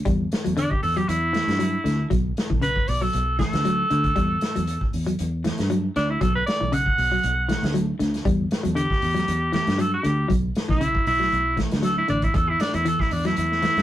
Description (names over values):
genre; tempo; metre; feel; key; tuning
afrobeat; 117 BPM; 4/4; swing 54% on 16ths; E dorian; A4 = 438 Hz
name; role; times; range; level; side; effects
semi-hollow electric guitar; arpeggios; 0.1-13.8 s; C#3 to G3; -26 LUFS; left 1 dB; none
fingered electric bass; bass; 0.1-13.8 s; A1 to G2; -26 LUFS; equal; none
vintage drum kit; drums; 0.1-13.8 s; hi-hat, kick drum, snare drum; -27 LUFS; equal; none
edgy alto saxophone; melody; 0.6-13.8 s; D4 to F#5; -23 LUFS; right 1 dB; none
room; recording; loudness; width
moderate booth ambience, RT60 0.3 s; rough rehearsal-room recording; -20 LUFS; side -12 dB against mid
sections
0.0-13.8 A section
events
alto saxophone solo 0.0-13.8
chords
0.1 Em9; 2.1 Bm11; 4.2 Emadd9; 6.2 Bm; 8.3 Em9; 10.3 Bmadd11; 12.3 E7sus2